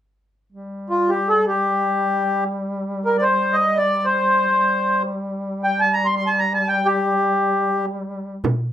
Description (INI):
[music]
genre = Arabic maqam ensemble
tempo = free time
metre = none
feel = none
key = G maqam bayati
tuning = A4 = 443 Hz
[part]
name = warm duduk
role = drone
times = 0.5-8.5 s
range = G3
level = -26 LUFS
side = left 1 dB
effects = stereo widening
[part]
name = accordion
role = melody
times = 0.9-7.9 s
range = F4 to C6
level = -17 LUFS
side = equal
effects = none
[part]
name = darbuka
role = percussion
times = 8.4-8.7 s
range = none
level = -21 LUFS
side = equal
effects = none
[part]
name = frame drum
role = percussion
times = 8.4-8.6 s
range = none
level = -23 LUFS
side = right 4 dB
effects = none
[sound]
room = wet small room reverb, RT60 0.5 s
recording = rough home demo mix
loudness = -17 LUFS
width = side -11 dB against mid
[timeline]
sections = 0.5-8.4 A section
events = none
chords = none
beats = free time